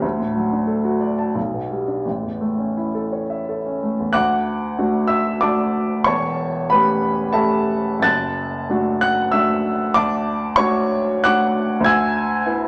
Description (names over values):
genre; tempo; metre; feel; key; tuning
classical, romantic character piece for solo piano; 81-101 BPM; 3/4; rubato; D major; A4 = 440 Hz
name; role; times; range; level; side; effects
warm upright piano; solo; 0.0-12.7 s; E1 to A6; -20 LUFS; equal; none
room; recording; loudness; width
wet large studio reverb, RT60 1.1 s; nothing above 10.7 kHz; -20 LUFS; mono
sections
0.0-4.1 A section; 4.1-12.7 B section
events
none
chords
0.0 D; 1.4 G/B; 2.1 A; 4.1 D; 6.1 A7/E; 8.0 D/F#; 10.0 D; 11.9 E7/D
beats
| 0.03 0.68 1.36 | 2.06 2.77 3.47 | 4.14 4.78 5.42 | 6.06 6.70 7.33 | 8.04 8.70 9.33 | 9.96 10.57 11.25 | 11.86 12.46